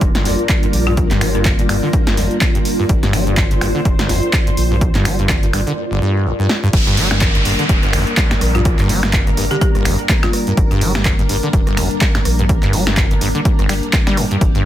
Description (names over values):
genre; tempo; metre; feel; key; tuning
acid house; 125 BPM; 4/4; swing 57% on 16ths; G minor pentatonic; A4 = 440 Hz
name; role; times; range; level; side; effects
string machine, full ensemble; sustained chords; 0.0-14.7 s; G3 to C5; -23 LUFS; left 1 dB; ensemble chorus, sidechain pumping
saturated sub bass; bass; 0.0-14.5 s; F1 to Bb1; -20 LUFS; equal; sidechain pumping
electronic kick drum; drums; 0.0-14.5 s; none; -16 LUFS; equal; overdrive
punchy analog drum machine; drums; 0.0-14.6 s; crash cymbal, finger snaps, handclaps, hi-hat, rim click, snare drum; -20 LUFS; equal; overdrive
granular cloud pad; texture; 0.0-5.8 s; F4 to D5; -24 LUFS; equal; built-in reverb, sidechain pumping
acid bass, saw; riff; 0.1-14.7 s; G1 to G3; -20 LUFS; equal; tube saturation, lush chorus, sidechain pumping, ping-pong delay
folk marimba with hard mallets; melody; 0.9-1.4, 8.5-10.6 s; F4 to Bb4; -24 LUFS; left 3 dB; digital delay
downlifter; sound effects; 6.7-10.6 s; none; -22 LUFS; equal; none
room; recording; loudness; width
light reverb; dense, heavily limited modern master; -13 LUFS; side -12 dB against mid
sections
0.0-6.7 A section; 6.7-14.7 B section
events
drum fill 6.5; drop 6.7-14.7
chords
0.0 Gm